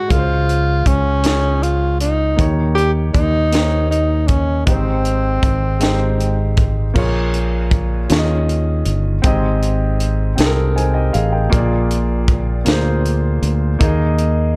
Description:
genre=slow gospel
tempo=52 BPM (dotted quarters)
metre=6/8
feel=straight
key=Ab major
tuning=A4 = 441 Hz
part: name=breathy tenor saxophone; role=melody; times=0.0-6.5 s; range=C4 to G4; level=-22 LUFS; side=equal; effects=none
part: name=warm grand piano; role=accompaniment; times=0.0-14.6 s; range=Ab2 to Ab5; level=-24 LUFS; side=equal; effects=none
part: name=fingered electric bass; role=bass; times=0.1-14.6 s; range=G1 to Eb2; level=-20 LUFS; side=equal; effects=none
part: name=crisp fusion drum kit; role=drums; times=0.1-14.4 s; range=crash cymbal, hi-hat, kick drum, snare drum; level=-21 LUFS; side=equal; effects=none
room=light reverb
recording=dark, warm production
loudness=-17 LUFS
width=mono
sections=0.0-7.0 A section; 7.0-14.6 B section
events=grand piano fill 10.4-11.5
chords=0.1 Dbmaj7; 2.4 Eb7; 4.7 Abmaj7; 7.0 Bbm7; 8.1 Eb9sus4; 9.2 Abmaj7; 11.5 Bb7; 13.8 Ebsus4

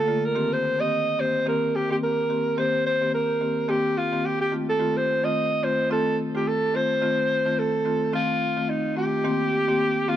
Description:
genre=afrobeats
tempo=108 BPM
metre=4/4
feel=swing 58% on 16ths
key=C dorian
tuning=A4 = 440 Hz
part: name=breathy alto saxophone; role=melody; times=0.0-10.2 s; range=Eb4 to Eb5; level=-23 LUFS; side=right 1 dB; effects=tape echo
part: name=marimba with medium mallets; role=accompaniment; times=0.1-10.2 s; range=D3 to G4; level=-26 LUFS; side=left 2 dB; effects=none
room=light reverb, small room ambience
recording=dry, gritty hardware recording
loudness=-21 LUFS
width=side -11 dB against mid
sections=0.4-9.2 A section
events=none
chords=0.4 Cm7; 4.5 F7; 9.2 Cm7

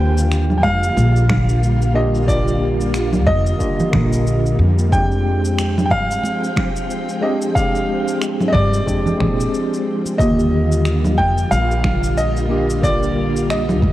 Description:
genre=sunset chillout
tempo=91 BPM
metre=4/4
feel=swing 57% on 16ths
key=unclear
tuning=A4 = 443 Hz
part: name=bright concert grand piano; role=melody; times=0.0-13.9 s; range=D5 to G5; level=-22 LUFS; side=equal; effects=tape echo
part: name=tine electric piano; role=accompaniment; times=0.0-13.9 s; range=D3 to Bb4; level=-22 LUFS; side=equal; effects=medium stereo tremolo, auto-pan
part: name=soft string machine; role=sustained chords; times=0.0-13.9 s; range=D3 to G5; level=-26 LUFS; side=equal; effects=ensemble chorus
part: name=upright bass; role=bass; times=0.0-13.9 s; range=Bb1 to Bb2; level=-18 LUFS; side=equal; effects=none
part: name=electronic shaker, finger snaps and congas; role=drums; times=0.2-13.8 s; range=none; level=-25 LUFS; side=right 1 dB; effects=studio reverb
part: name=electronic kick drum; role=drums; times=0.6-13.9 s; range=none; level=-22 LUFS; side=equal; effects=studio reverb
part: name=congas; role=percussion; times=0.6-13.9 s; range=none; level=-23 LUFS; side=right 2 dB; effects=none
room=light reverb, studio ambience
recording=worn, warbling old tape, cassette tape, warbly pitch drift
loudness=-15 LUFS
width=side -14 dB against mid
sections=0.0-13.9 A section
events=none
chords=0.0 Ebmaj9; 4.9 Fm69; 10.2 Ebmaj9

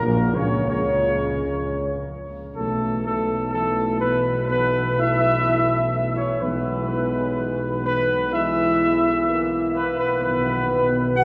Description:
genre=classical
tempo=63 BPM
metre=4/4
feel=straight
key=unclear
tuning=A4 = 443 Hz
part: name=dark trumpet section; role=melody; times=0.0-11.2 s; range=A4 to F#5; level=-25 LUFS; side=equal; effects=none
part: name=dark trombone section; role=sustained chords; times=0.0-11.2 s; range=A#2 to B3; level=-32 LUFS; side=equal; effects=none
part: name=mellow tuba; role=bass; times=0.0-11.2 s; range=A#1 to C#2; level=-28 LUFS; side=equal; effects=none
part: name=dark French horn section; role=sustained chords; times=0.1-11.2 s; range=A3 to F#4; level=-29 LUFS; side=equal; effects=none
room=wet cathedral reverb, RT60 5.1 s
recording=heard from further back in the room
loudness=-22 LUFS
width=mono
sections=0.0-11.2 A section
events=none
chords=0.0 F# (rootless); 2.6 Asus2/B; 6.4 E/B; 10.2 B

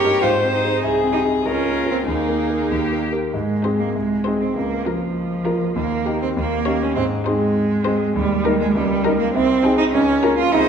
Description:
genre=quick classical-period movement for piano quartet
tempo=100 BPM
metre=2/4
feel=straight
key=Ab major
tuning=A4 = 440 Hz
part: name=rich violin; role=melody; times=0.0-10.7 s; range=G4 to Db5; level=-27 LUFS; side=left 8 dB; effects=none
part: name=rich cello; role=second line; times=0.0-10.7 s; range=F3 to G4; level=-20 LUFS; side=right 3 dB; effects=none
part: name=clear grand piano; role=accompaniment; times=0.0-10.7 s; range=C2 to Bb4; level=-22 LUFS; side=left 2 dB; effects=none
part: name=rich viola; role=accompaniment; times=0.0-10.7 s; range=Eb4 to C5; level=-26 LUFS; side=right 2 dB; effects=none
room=wet concert hall reverb, RT60 2.0 s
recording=minimal, uncompressed stereo recording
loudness=-17 LUFS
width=side -7 dB against mid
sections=0.0-3.3 A section; 3.3-10.7 B section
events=none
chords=0.2 Ab; 0.8 Ab/C; 1.5 Bbm/Db; 2.1 Ebsus4; 2.7 Eb; 3.3 Ab; 3.9 Ab/C; 4.6 Bbm/Db; 5.8 Eb; 6.4 Eb7; 7.0 Ab; 8.1 Eb; 8.7 Eb7/Db; 9.3 Ab/C; 9.9 Bbm/Db

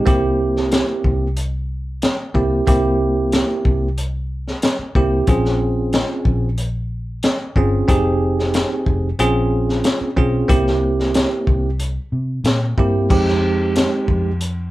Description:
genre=straight-eighth soul blues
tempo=92 BPM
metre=4/4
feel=straight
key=unclear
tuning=A4 = 441 Hz
part: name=bell-like tine electric piano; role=accompaniment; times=0.0-14.3 s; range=Ab3 to Ab4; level=-18 LUFS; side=right 2 dB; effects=fast stereo tremolo
part: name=vintage muted fingered electric bass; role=bass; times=0.1-14.7 s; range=F1 to C3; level=-21 LUFS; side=equal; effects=none
part: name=crunchy breakbeat drum kit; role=drums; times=0.1-14.6 s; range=crash cymbal, hi-hat, kick drum, snare drum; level=-19 LUFS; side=left 1 dB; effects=none
room=light reverb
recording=band playing live in one room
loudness=-16 LUFS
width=side -16 dB against mid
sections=0.0-13.1 A section; 13.1-14.7 B section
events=none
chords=0.1 C7; 5.3 Bbm7; 7.9 Fm7; 9.2 Bbm7; 10.5 C7; 13.1 Fm7

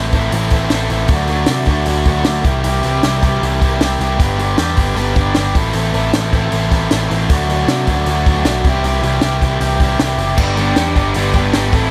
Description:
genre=indie rock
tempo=155 BPM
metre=4/4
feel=straight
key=G major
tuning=A4 = 440 Hz
part: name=raw garage guitar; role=riff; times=0.0-11.9 s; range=G2 to A4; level=-19 LUFS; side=equal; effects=overdrive
part: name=picked electric bass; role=bass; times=0.0-11.9 s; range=F#1 to C3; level=-21 LUFS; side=equal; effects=none
part: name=compact cocktail drum kit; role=drums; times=0.1-11.8 s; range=crash cymbal, hi-hat, kick drum, snare drum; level=-20 LUFS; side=equal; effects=none
part: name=overdriven electric guitar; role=riff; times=10.4-11.9 s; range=G2 to A4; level=-22 LUFS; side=equal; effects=analog chorus
room=light reverb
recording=none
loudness=-15 LUFS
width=mono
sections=0.0-10.4 A section; 10.4-11.9 A section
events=none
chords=0.0 Am; 1.1 D; 2.5 C; 4.2 G; 5.5 Am; 7.3 D; 8.6 C; 10.4 G

